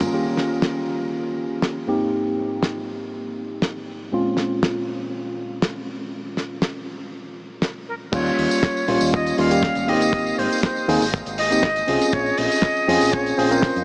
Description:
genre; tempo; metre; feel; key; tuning
nu-disco, nu disco; 120 BPM; 4/4; straight; unclear; A4 = 442 Hz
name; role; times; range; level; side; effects
mellow tine electric piano; accompaniment; 0.0-13.8 s; Ab2 to Bb4; -22 LUFS; equal; vintage 12-bit sampler grit, diffuse ambient delay
damped 70s drum kit; drums; 0.0-13.8 s; crash cymbal, hi-hat, snare drum, tambourine, toms; -26 LUFS; equal; none
breathy bright jazz flute; melody; 7.9-13.8 s; Bb4 to F5; -23 LUFS; equal; diffuse ambient delay
fingered electric bass with an envelope filter; bass; 8.1-13.8 s; Ab1 to F2; -28 LUFS; equal; sidechain pumping
kick drum; drums; 8.1-13.7 s; none; -24 LUFS; equal; none
room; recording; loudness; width
moderate huge ambient reverb, RT60 8.0 s; dreamy mix soaked in reverb, small speaker sound; -19 LUFS; side -34 dB against mid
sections
0.1-8.1 A section; 8.1-13.8 B section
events
drop 8.1-13.8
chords
0.1 Eb7; 1.9 Abmaj7; 4.1 Bbm7; 8.1 Eb7; 9.9 Abmaj7; 12.1 Bbm7

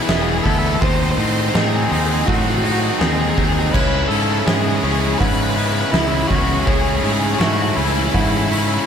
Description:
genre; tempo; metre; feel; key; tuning
post-rock; 82 BPM; 4/4; straight; unclear; A4 = 436 Hz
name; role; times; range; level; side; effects
bluesy overdriven lead guitar; melody; 0.0-8.9 s; E4 to B#4; -23 LUFS; equal; distortion, slapback echo
pedal harmonium; sustained chords; 0.0-8.9 s; E4 to B5; -33 LUFS; equal; none
felt-muted upright piano; arpeggios; 0.0-8.9 s; B#4 to F#5; -30 LUFS; right 4 dB; slapback echo
twangy electric guitar; arpeggios; 0.0-8.9 s; C#3 to E4; -28 LUFS; left 4 dB; none
tight distorted guitar; riff; 0.0-8.9 s; C#3 to E4; -23 LUFS; left 14 dB; distortion
tight distorted guitar; riff; 0.0-8.9 s; C#3 to E4; -24 LUFS; right 15 dB; distortion
growling fingered electric bass; bass; 0.1-8.8 s; E1 to A2; -21 LUFS; equal; overdrive
oversized low-tuned drum kit; drums; 0.1-8.7 s; crash cymbal, hi-hat, kick drum, snare drum; -21 LUFS; equal; none
room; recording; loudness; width
little or no reverb; none; -15 LUFS; side -7 dB against mid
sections
0.0-8.9 A section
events
none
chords
0.0 Eadd9; 0.8 G#7/D#; 3.7 C#m7; 6.7 A/C#

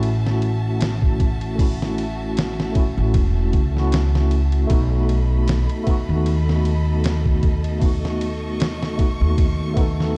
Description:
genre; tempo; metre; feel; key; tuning
trip hop; 77 BPM; 4/4; swing 55% on 16ths; F# dorian; A4 = 440 Hz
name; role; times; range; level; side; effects
tine electric piano; accompaniment; 0.0-10.2 s; A3 to A4; -28 LUFS; equal; tremolo, tape echo
rich studio violin section; sustained chords; 0.0-10.2 s; F#4 to C#6; -36 LUFS; equal; none
upright bass; bass; 0.0-10.2 s; E1 to D#2; -23 LUFS; equal; none
trip hop sampler-style drum kit; drums; 0.0-10.2 s; hi-hat, kick drum, ride cymbal, snare drum; -24 LUFS; equal; vintage 12-bit sampler grit, studio reverb
room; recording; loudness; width
digital ambience; dark, warm production; -20 LUFS; mono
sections
0.0-10.2 A section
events
none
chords
0.0 F#m7; 4.7 B7

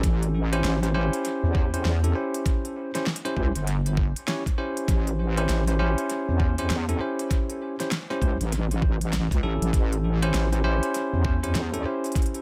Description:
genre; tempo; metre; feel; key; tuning
glitch hop; 99 BPM; 4/4; swing 62% on 16ths; unclear; A4 = 440 Hz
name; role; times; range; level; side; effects
bell-like tine electric piano; stabs; 0.0-12.4 s; C#4 to C#5; -31 LUFS; equal; vintage 12-bit sampler grit, sidechain pumping, dub echo
wobble bass; bass; 0.0-11.8 s; G1 to E2; -27 LUFS; equal; chorus, tube saturation
electronic kick drum; drums; 0.0-12.3 s; none; -26 LUFS; equal; studio reverb
pop drum kit; drums; 0.0-12.4 s; hi-hat, snare drum; -35 LUFS; equal; studio reverb, dub echo
room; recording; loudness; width
digital ambience; echo-heavy mix; -25 LUFS; mono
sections
0.0-12.4 A section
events
none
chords
0.0 A7#9

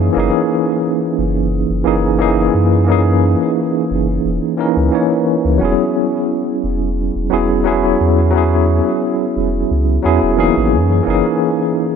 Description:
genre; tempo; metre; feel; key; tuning
sunset chillout; 88 BPM; 4/4; straight; unclear; A4 = 443 Hz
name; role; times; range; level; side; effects
barky tine electric piano; accompaniment; 0.0-12.0 s; E3 to C#5; -14 LUFS; moving between left 3 dB and right 4 dB; medium stereo tremolo, auto-pan, digital delay
warm sub bass; bass; 0.0-11.2 s; E1 to F#2; -17 LUFS; equal; none
room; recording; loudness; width
moderate lush hall reverb, RT60 3.0 s; none; -13 LUFS; side -7 dB against mid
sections
0.0-12.0 A section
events
none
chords
0.0 F#13; 5.6 E69; 10.7 F#13

